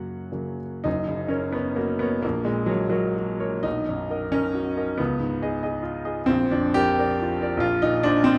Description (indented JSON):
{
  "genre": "classical, romantic character piece for solo piano",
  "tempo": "70-96 BPM (dotted quarters)",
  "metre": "6/8",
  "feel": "rubato",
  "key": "F# major",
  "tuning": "A4 = 439 Hz",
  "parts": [
    { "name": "clear grand piano", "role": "solo", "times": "0.0-8.4 s", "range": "F#1 to F#5", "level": "-24 LUFS", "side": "equal", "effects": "none" }
  ],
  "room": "wet recital hall reverb, RT60 1.6 s",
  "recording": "dark, warm production",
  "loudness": "-25 LUFS",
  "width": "mono",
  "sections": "0.9-8.4 A section",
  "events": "none",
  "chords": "0.0 F#; 2.2 F#/A#; 3.6 Bmaj7; 5.0 C#9; 6.3 Bb; 7.6 Cm7/Bb",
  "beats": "0.04 | 0.86 1.55 | 2.24 2.92 | 3.65 4.33 | 4.99 5.63 | 6.29 7.00 | 7.63 8.27"
}